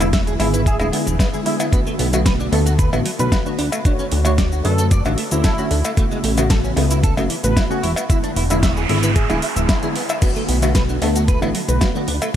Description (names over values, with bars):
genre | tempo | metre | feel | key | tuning
nu-disco, nu disco | 113 BPM | 4/4 | straight | B dorian | A4 = 441 Hz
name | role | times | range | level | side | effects
bright reed electric piano | accompaniment | 0.0-12.4 s | C#3 to C#5 | -22 LUFS | equal | overdrive, ensemble chorus, sidechain pumping, ping-pong delay
direct-recorded clean electric guitar | riff | 0.0-12.3 s | A2 to E5 | -26 LUFS | right 2 dB | ensemble chorus, ping-pong delay
chorused synth bass | bass | 0.0-12.2 s | D1 to F#2 | -19 LUFS | equal | none
pop drum kit | drums | 0.0-12.3 s | crash cymbal, hi-hat, shaker, snare drum | -25 LUFS | left 1 dB | overdrive
cowbell | percussion | 0.0-12.3 s | none | -29 LUFS | left 1 dB | none
electronic kick drum | drums | 0.1-11.9 s | none | -18 LUFS | equal | none
wide unison lead | melody | 0.4-11.9 s | E4 to B4 | -29 LUFS | equal | diffuse ambient delay
noise sweep | sound effects | 8.4-10.2 s | none | -28 LUFS | right 4 dB | none
room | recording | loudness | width
light reverb, digital ambience | none | -15 LUFS | side -10 dB against mid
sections
0.0-12.4 A section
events
noise sweep 8.4-10.2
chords
0.0 E7; 1.7 Bm7; 3.6 Dmaj7; 6.0 A69; 7.8 E7; 10.2 Bm7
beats
0.14 0.67 1.20 | 1.73 2.26 2.79 3.32 | 3.85 4.38 4.91 5.44 | 5.97 6.51 7.04 7.57 | 8.10 8.63 9.16 9.69 | 10.22 10.75 11.29 11.82 | 12.35